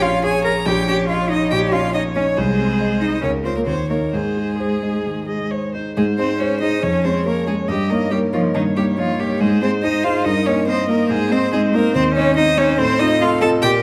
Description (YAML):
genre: quick classical-period movement for piano quartet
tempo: 140 BPM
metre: 4/4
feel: rubato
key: Ab major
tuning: A4 = 440 Hz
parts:
  - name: clear violin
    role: melody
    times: 0.0-13.7 s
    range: Eb4 to Bb5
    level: -26 LUFS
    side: equal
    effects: none
  - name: rich cello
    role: second line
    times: 0.0-13.8 s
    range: Eb3 to Bb4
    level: -23 LUFS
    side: equal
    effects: none
  - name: rich viola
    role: accompaniment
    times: 0.0-13.8 s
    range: Ab4 to Eb5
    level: -29 LUFS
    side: equal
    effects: none
  - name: warm concert grand piano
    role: accompaniment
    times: 0.0-13.8 s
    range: Bb1 to Eb5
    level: -22 LUFS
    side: equal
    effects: none
room: wet recital hall reverb, RT60 1.5 s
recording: close, detailed microphones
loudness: -18 LUFS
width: mono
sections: 0.0-6.0 A section; 6.0-13.8 B section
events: none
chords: 0.0 Bbm7; 0.7 Eb5/Bb; 2.4 Ab/C; 3.2 Bbm/Db; 3.7 Eb5; 4.1 Ab; 6.8 Db/F; 7.7 Eb7/G; 9.4 Ab; 10.3 Eb/G; 11.1 Ab; 12.8 F7/A